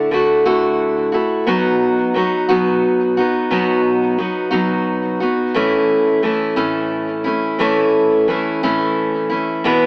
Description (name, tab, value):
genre	rock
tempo	59 BPM (dotted quarters)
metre	6/8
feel	straight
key	A major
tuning	A4 = 438 Hz
part	picked steel-string acoustic guitar	solo	0.0-9.9 s	E2 to F#4	-17 LUFS	equal	tape echo
room	light reverb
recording	AM radio sound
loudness	-17 LUFS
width	mono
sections	0.0-9.9 A section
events	none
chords	0.0 Dadd9; 1.5 B; 5.6 A